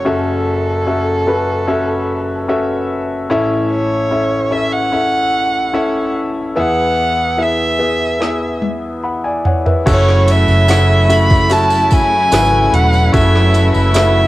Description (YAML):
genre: pop ballad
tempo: 74 BPM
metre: 4/4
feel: straight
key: unclear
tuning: A4 = 439 Hz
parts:
  - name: rich violin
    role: melody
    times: 0.0-14.3 s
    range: A4 to B5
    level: -16 LUFS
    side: right 1 dB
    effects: cassette tape, plate reverb
  - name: clear concert grand piano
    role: accompaniment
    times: 0.0-14.3 s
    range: F#1 to B5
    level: -16 LUFS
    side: left 1 dB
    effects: plate reverb
  - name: smooth R&B drum kit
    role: drums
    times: 8.2-14.1 s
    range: crash cymbal, hi-hat, kick drum, snare drum, toms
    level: -17 LUFS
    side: equal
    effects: cassette tape
  - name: rich studio string section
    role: sustained chords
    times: 9.9-14.3 s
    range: C#3 to E4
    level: -19 LUFS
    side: right 1 dB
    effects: plate reverb
  - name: vintage muted fingered electric bass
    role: bass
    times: 9.9-14.3 s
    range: E1 to G#1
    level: -14 LUFS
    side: equal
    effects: none
  - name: tambourine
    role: percussion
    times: 9.9-14.1 s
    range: none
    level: -30 LUFS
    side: right 8 dB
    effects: none
room: light reverb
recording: home recording on cassette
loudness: -12 LUFS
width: side -16 dB against mid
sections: 0.0-9.9 A section; 9.9-14.3 B section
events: drum fill 8.2-9.9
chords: 0.0 F#m7; 3.3 A; 6.6 E; 9.9 F#m7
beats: | 0.06 0.87 1.68 2.49 | 3.30 4.11 4.93 5.74 | 6.57 7.38 8.21 9.04 | 9.87 10.69 11.51 12.33 | 13.14 13.96